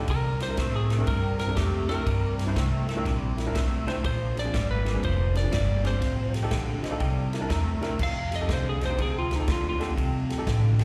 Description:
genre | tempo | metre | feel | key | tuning
electric blues shuffle | 121 BPM | 4/4 | swing 65% on 8ths | F mixolydian | A4 = 436 Hz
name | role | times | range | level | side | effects
electric guitar at the edge of break-up | riff | 0.0-10.8 s | F2 to A3 | -36 LUFS | equal | analog chorus, slapback echo
lightly driven lead guitar | melody | 0.1-9.9 s | Eb4 to F5 | -34 LUFS | equal | slapback echo
upright bass | bass | 0.1-10.8 s | F1 to C3 | -30 LUFS | equal | none
swinging big-band drum kit | drums | 0.1-10.8 s | crash cymbal, kick drum, ride cymbal, snare drum | -33 LUFS | equal | none
warm baby grand piano | accompaniment | 0.4-10.8 s | C4 to Bb5 | -38 LUFS | equal | slapback echo
room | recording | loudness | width
studio ambience | live gig heard through the venue's PA, recital hall reverb | -27 LUFS | mono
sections
0.0-8.0 A section; 8.0-10.8 B section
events
grand piano fill 6.5-8.0; lead electric guitar solo 8.0-10.8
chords
0.1 C7; 4.0 Bb7; 6.0 F7; 7.0 C7; 8.0 F7

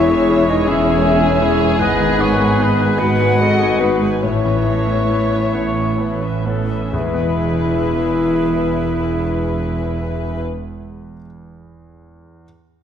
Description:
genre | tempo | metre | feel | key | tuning
cinematic | 42-54 BPM (dotted quarters) | 6/8 | rubato | E major | A4 = 440 Hz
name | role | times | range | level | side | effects
muted studio violin section | melody | 0.0-10.4 s | G#4 to D#5 | -23 LUFS | left 5 dB | none
bright concert flute | second line | 0.0-10.4 s | B4 to F#5 | -26 LUFS | left 1 dB | none
mellow cor anglais | second line | 0.0-10.4 s | B4 to E5 | -26 LUFS | right 3 dB | none
muted studio violin section | second line | 0.0-10.4 s | G#4 to G#5 | -31 LUFS | left 2 dB | none
warm clarinet | second line | 0.0-10.4 s | G#4 to C#5 | -29 LUFS | left 1 dB | none
bright concert grand piano | accompaniment | 0.0-12.5 s | E2 to B4 | -26 LUFS | left 1 dB | none
muted studio viola section | accompaniment | 0.0-10.4 s | E3 to G#4 | -29 LUFS | right 3 dB | none
dark French horn section | sustained chords | 0.0-10.4 s | B3 to F#4 | -21 LUFS | left 4 dB | none
concert harp | arpeggios | 0.0-11.2 s | E2 to B5 | -27 LUFS | left 7 dB | none
muted studio cello section | bass | 0.0-10.4 s | E2 to A2 | -22 LUFS | right 2 dB | none
muted studio double bass section | bass | 0.0-10.4 s | E1 to A1 | -22 LUFS | right 4 dB | none
timpani | percussion | 6.9-11.1 s | E2 | -31 LUFS | right 1 dB | none
room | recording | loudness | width
wet scoring stage reverb, RT60 1.7 s | none | -14 LUFS | side -8 dB against mid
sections
0.0-6.9 A section; 6.9-9.6 B section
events
slowing down 0.7-6.9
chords
0.0 C#m/E; 1.8 G#m; 4.2 Aadd9; 6.9 E

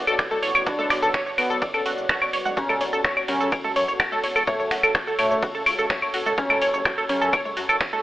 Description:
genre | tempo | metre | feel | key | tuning
melodic techno | 126 BPM | 4/4 | straight | F# minor | A4 = 442 Hz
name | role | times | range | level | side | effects
deep dark ambient pad | sustained chords | 0.0-8.0 s | B3 to D5 | -32 LUFS | equal | chorus, built-in reverb, sidechain pumping
swelling detuned saw bass | bass | 0.0-8.0 s | E1 to F#2 | -38 LUFS | equal | sidechain pumping
tight sequenced synth | arpeggios | 0.1-8.0 s | F#4 to F#5 | -24 LUFS | equal | chorus, sidechain pumping, tape echo
punchy analog drum machine | drums | 0.1-8.0 s | claves, congas, finger snaps, hi-hat, ride cymbal, shaker | -24 LUFS | left 1 dB | overdrive, sidechain pumping on cymbals, sidechain pumping on perc, sidechain pumping on hats
electronic kick drum | drums | 0.2-7.9 s | none | -29 LUFS | equal | overdrive
wide unison lead | melody | 0.7-7.3 s | A3 to D4 | -29 LUFS | equal | sidechain pumping, tape echo
dark detuned synth bell | second line | 0.7-7.3 s | C#4 to D4 | -34 LUFS | left 1 dB | chorus, phaser, sidechain pumping, tape echo
room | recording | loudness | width
moderate digital room reverb, RT60 1.2 s, digital ambience | telephone sound | -20 LUFS | side -15 dB against mid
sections
0.0-8.0 A section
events
none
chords
0.0 Bm; 2.6 F#m

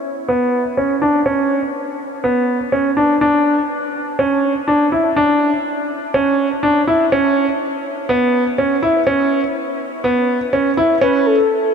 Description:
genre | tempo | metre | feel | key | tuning
electronica | 123 BPM | 4/4 | straight | unclear | A4 = 439 Hz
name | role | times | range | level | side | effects
clear baby grand piano | riff | 0.3-11.3 s | B3 to E4 | -14 LUFS | equal | low-pass filter, ping-pong delay
warm velvety synth lead | melody | 11.0-11.7 s | A4 to B4 | -14 LUFS | left 3 dB | chorus
room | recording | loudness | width
wet huge ambient reverb, RT60 7.0 s | none | -14 LUFS | side -6 dB against mid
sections
0.0-11.7 A section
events
filter sweep on grand piano 0.0-11.7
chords
0.0 Bmadd9; 3.2 C#m

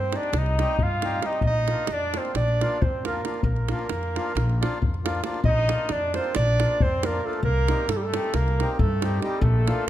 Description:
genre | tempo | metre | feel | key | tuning
balkan folk, Balkan wedding band | 270 BPM (eighths) | 9/8 | straight | Bb major | A4 = 440 Hz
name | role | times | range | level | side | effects
mellow clarinet | melody | 0.0-9.9 s | G4 to F5 | -27 LUFS | right 3 dB | none
mellow trumpet | second line | 0.0-9.9 s | G3 to F4 | -33 LUFS | left 5 dB | none
upright bass | bass | 0.0-9.9 s | Bb1 to G2 | -25 LUFS | equal | none
accordion | accompaniment | 0.1-9.8 s | F3 to G4 | -32 LUFS | left 2 dB | none
davul | percussion | 0.1-9.8 s | none | -28 LUFS | equal | none
room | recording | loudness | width
moderate recital hall reverb, RT60 1.6 s | none | -22 LUFS | side -12 dB against mid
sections
0.0-5.4 A section; 5.4-9.9 A section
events
none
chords
0.0 Cm; 1.4 Bb; 7.4 Cm

